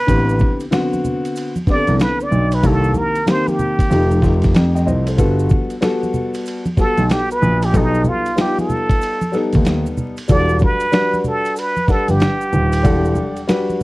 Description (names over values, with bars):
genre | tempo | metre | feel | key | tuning
hip hop, jazz-hop | 94 BPM | 4/4 | swing 63% on 16ths | E minor | A4 = 436 Hz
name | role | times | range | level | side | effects
trumpet with plunger mute | melody | 0.0-13.7 s | D#4 to D5 | -20 LUFS | right 1 dB | none
warm upright piano | accompaniment | 0.1-13.8 s | D3 to G5 | -21 LUFS | left 2 dB | none
dark grand piano | bass | 0.1-13.1 s | D#1 to F2 | -17 LUFS | equal | none
dusty soul sampler-style drum kit | drums | 0.1-13.7 s | hi-hat, kick drum, ride cymbal, snare drum | -17 LUFS | equal | none
maracas and congas | percussion | 0.1-13.8 s | none | -26 LUFS | right 1 dB | none
room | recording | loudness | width
little or no reverb | dry, close 1970s-style studio recording, vinyl crackle | -14 LUFS | side -20 dB against mid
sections
0.0-13.8 A section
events
muted trumpet solo 0.0-13.8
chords
0.1 Am11; 2.6 Cm7; 3.9 F9; 5.2 Gmaj9; 7.7 Baug7; 10.3 Em11